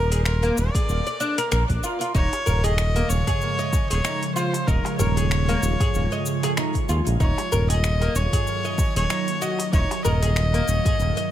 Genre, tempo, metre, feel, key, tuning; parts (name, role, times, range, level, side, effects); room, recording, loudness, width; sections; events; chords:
organic downtempo; 95 BPM; 4/4; swing 56% on 16ths; Eb minor; A4 = 441 Hz
clear kamancheh; melody; 0.0-11.3 s; Bb4 to Eb5; -28 LUFS; left 1 dB; tape echo
oud; arpeggios; 0.0-11.3 s; Bb3 to Eb5; -28 LUFS; left 1 dB; tape echo
smooth synth bass; bass; 0.0-11.1 s; Eb1 to Eb2; -22 LUFS; equal
deep house drum kit; drums; 0.1-11.3 s; cabasa, finger snaps, hi-hat; -31 LUFS; left 1 dB; studio reverb
electronic kick drum; drums; 0.7-11.0 s; -23 LUFS; equal; studio reverb
ethereal airy pad; sustained chords; 3.0-11.3 s; Db3 to Bb4; -28 LUFS; right 1 dB; ensemble chorus, built-in reverb, sidechain pumping
darbuka; percussion; 2.3-11.0 s; -31 LUFS; left 1 dB
studio reverb; echo-heavy mix; -20 LUFS; side -12 dB against mid
0.0-11.3 A section
0.0 Bb/Eb; 2.1 Db/Eb; 7.2 Ebmadd9